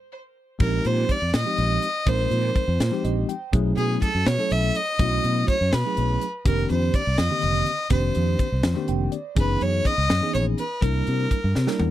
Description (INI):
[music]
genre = electric jazz fusion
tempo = 82 BPM (dotted quarters)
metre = 6/8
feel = straight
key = unclear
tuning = A4 = 436 Hz
[part]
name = clear violin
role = melody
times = 0.6-11.8 s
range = G#4 to E5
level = -26 LUFS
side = equal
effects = none
[part]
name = bell-like tine electric piano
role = accompaniment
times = 0.6-11.9 s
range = D3 to G5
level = -27 LUFS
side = equal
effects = medium stereo tremolo
[part]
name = fretless electric bass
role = bass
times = 0.6-11.9 s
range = F1 to C3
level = -23 LUFS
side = equal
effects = ensemble chorus
[part]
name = crisp fusion drum kit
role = drums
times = 0.6-11.9 s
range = crash cymbal, hi-hat, kick drum, snare drum, toms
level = -24 LUFS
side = equal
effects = none
[sound]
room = little or no reverb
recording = dry, close 1970s-style studio recording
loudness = -20 LUFS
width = side -13 dB against mid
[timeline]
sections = 0.6-11.9 A section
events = drum fill 0.0-0.6, 11.6-11.9; tine electric piano fill 0.0-0.6, 2.8-3.5, 8.6-9.4; band accent 0.0-0.6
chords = 0.0 N.C.; 0.6 Bb13sus4; 3.5 B13sus4; 6.5 F13sus4; 9.4 Gb13sus4; 10.8 C9